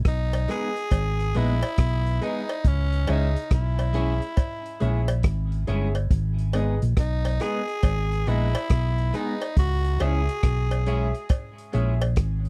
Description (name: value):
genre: roots reggae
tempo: 69 BPM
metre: 4/4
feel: swing 65% on 16ths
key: G# minor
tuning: A4 = 440 Hz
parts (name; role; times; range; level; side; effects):
- hollow-body short-scale fingered electric bass; bass; 0.0-12.5 s; G1 to C#2; -26 LUFS; equal; none
- growling tenor saxophone; melody; 0.1-11.3 s; C#4 to G#4; -33 LUFS; equal; tape echo
- vintage drum kit; drums; 0.1-12.5 s; hi-hat, kick drum, rim click; -25 LUFS; equal; none
- warm grand piano; stabs; 0.3-12.0 s; G#4 to E5; -36 LUFS; equal; none
- cowbell; percussion; 0.3-12.2 s; none; -36 LUFS; equal; none
- clean electric guitar; accompaniment; 0.5-11.9 s; G#3 to G#4; -35 LUFS; equal; phaser, tape echo
room: little or no reverb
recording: dry, close 1970s-style studio recording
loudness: -24 LUFS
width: mono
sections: 0.0-12.5 A section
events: none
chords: 0.0 G#m; 2.6 C#m; 6.1 G#m; 9.6 C#m